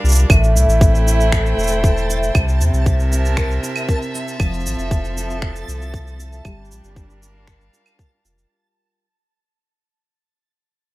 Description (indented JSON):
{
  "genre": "folktronica",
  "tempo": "117 BPM",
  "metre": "4/4",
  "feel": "straight",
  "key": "G dorian",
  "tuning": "A4 = 441 Hz",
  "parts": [
    { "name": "warm string quartet", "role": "sustained chords", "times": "0.0-8.5 s", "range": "C3 to G5", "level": "-25 LUFS", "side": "right 1 dB", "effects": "none" },
    { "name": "nylon-string guitar", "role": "arpeggios", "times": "0.0-9.1 s", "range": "A2 to Bb4", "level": "-24 LUFS", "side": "equal", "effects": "tape echo" },
    { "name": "warm sub bass", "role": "bass", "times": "0.0-8.5 s", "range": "E1 to E2", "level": "-17 LUFS", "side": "equal", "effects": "none" },
    { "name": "electronic shaker, claves and finger snaps", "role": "drums", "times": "0.1-8.5 s", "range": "none", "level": "-25 LUFS", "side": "right 2 dB", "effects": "none" },
    { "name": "electronic kick drum", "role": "drums", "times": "0.3-8.1 s", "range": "none", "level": "-16 LUFS", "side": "equal", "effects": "none" },
    { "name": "backwards swelling texture", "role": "texture", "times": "1.5-8.5 s", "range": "A5", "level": "-34 LUFS", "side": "right 2 dB", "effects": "built-in reverb" }
  ],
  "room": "little or no reverb",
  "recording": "none",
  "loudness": "-15 LUFS",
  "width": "side -19 dB against mid",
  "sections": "0.3-8.5 A section",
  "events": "fade-out 0.3-8.5",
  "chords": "0.3 Am7; 2.3 C7; 4.4 Fmaj7; 6.4 Gm7"
}